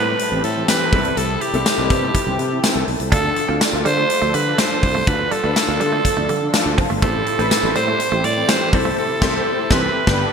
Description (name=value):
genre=1980s-style pop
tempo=123 BPM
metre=4/4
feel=straight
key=D dorian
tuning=A4 = 439 Hz
part: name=raspy alto saxophone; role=melody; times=0.0-10.3 s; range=G4 to D5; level=-21 LUFS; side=right 2 dB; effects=digital delay
part: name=clear concert grand piano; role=accompaniment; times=0.0-10.3 s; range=G2 to A5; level=-24 LUFS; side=left 2 dB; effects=ensemble chorus
part: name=glassy FM pad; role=sustained chords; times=0.0-10.3 s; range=A4 to D6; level=-28 LUFS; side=left 2 dB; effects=ensemble chorus, built-in reverb
part: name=fingered electric bass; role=bass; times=0.0-10.2 s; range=F1 to D3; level=-24 LUFS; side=equal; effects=none
part: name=big rock drum kit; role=drums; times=0.2-10.2 s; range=crash cymbal, hi-hat, kick drum, snare drum, tambourine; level=-20 LUFS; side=left 1 dB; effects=gated reverb
part: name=mellow synth brass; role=stabs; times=0.3-10.2 s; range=D3 to A4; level=-26 LUFS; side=left 1 dB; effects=chorus, digital delay
part: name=direct-recorded clean electric guitar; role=riff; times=3.1-8.9 s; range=G3 to D4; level=-27 LUFS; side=right 8 dB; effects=lush chorus
room=moderate lush hall reverb, RT60 1.6 s, studio ambience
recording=bright 1980s-style digital production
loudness=-15 LUFS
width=side -6 dB against mid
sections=0.0-10.3 A section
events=grand piano fill 6.3-7.0; band accent 9.0-10.3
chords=0.0 Am7; 0.9 C6; 3.1 Dm; 7.0 Am7; 8.7 C6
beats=0.20 0.68 | 1.17 1.66 2.15 2.63 | 3.12 3.61 4.10 4.59 | 5.07 5.56 6.05 6.54 | 7.03 7.51 8.00 8.49 | 8.98 9.46 9.95